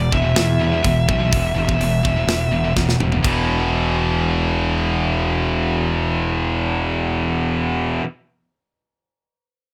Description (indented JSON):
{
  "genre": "heavy metal",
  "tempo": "125 BPM",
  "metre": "4/4",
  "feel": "straight",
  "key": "unclear",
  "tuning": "A4 = 440 Hz",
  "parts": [
    { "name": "high-gain lead guitar", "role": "melody", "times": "0.0-2.7 s", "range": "D5 to E5", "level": "-26 LUFS", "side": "equal", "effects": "distortion" },
    { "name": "distorted electric guitar", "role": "riff", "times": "0.0-8.1 s", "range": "E2 to E3", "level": "-26 LUFS", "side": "equal", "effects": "overdrive" },
    { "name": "scooped high-gain guitar", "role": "riff", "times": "0.0-8.1 s", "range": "E2 to E3", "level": "-25 LUFS", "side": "equal", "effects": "distortion" },
    { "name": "fuzz fingered electric bass", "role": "bass", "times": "0.0-8.0 s", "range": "E1 to E2", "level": "-24 LUFS", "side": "equal", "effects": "overdrive" },
    { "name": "tight metal drum kit", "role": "drums", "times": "0.1-3.4 s", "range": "crash cymbal, hi-hat, kick drum, snare drum, toms", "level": "-24 LUFS", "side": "equal", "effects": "none" }
  ],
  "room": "light reverb",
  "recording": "none",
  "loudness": "-19 LUFS",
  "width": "mono",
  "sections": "0.0-3.2 A section; 3.2-7.1 B section",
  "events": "drum fill 2.8-3.2",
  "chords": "0.0 E5"
}